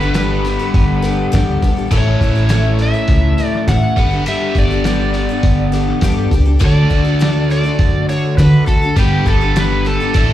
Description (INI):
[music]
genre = folk rock and heartland rock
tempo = 102 BPM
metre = 4/4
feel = straight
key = unclear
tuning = A4 = 440 Hz
[part]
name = overdriven slide guitar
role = melody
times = 0.0-10.3 s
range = G4 to F#5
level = -21 LUFS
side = right 1 dB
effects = slapback echo, plate reverb
[part]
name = picked twelve-string acoustic guitar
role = accompaniment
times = 0.0-10.3 s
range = A2 to C#5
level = -22 LUFS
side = left 6 dB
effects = plate reverb, slapback echo
[part]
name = tonewheel organ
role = sustained chords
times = 0.0-10.3 s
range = A3 to A4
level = -32 LUFS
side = left 1 dB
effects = none
[part]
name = overdriven electric guitar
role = riff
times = 0.0-10.3 s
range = A2 to B4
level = -19 LUFS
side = left 1 dB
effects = slapback echo
[part]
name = upright bass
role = bass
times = 0.0-10.3 s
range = G1 to D3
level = -16 LUFS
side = equal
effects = none
[part]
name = lo-fi sampler-style drum kit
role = drums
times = 0.1-10.3 s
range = crash cymbal, hi-hat, kick drum, snare drum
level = -16 LUFS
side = equal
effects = none
[sound]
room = little or no reverb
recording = live gig heard through the venue's PA, club reverb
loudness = -12 LUFS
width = side -12 dB against mid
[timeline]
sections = 0.0-10.3 A section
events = none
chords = 0.0 Gadd9; 1.9 A; 4.0 Gadd9; 6.6 D; 9.0 Gadd9